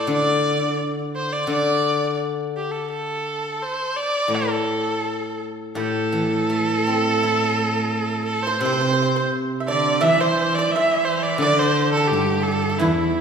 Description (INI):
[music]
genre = chinese traditional, Chinese chamber ensemble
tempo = 85 BPM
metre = 4/4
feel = rubato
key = A yu mode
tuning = A4 = 440 Hz
[part]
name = clear erhu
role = melody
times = 0.0-13.2 s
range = E4 to E5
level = -22 LUFS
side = right 1 dB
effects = none
[part]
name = steel-string zither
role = accompaniment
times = 0.0-13.2 s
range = A2 to E4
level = -24 LUFS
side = left 2 dB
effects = none
[part]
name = pipa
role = second line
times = 5.8-13.2 s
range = E4 to E5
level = -24 LUFS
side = right 2 dB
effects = none
[part]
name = rich cello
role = second line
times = 5.8-13.2 s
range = E2 to E3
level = -26 LUFS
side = right 4 dB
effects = none
[sound]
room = wet recital hall reverb, RT60 1.8 s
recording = recorded in a church or concert hall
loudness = -19 LUFS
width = side -6 dB against mid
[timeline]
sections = 0.0-5.8 A section; 5.8-13.2 B section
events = none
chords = none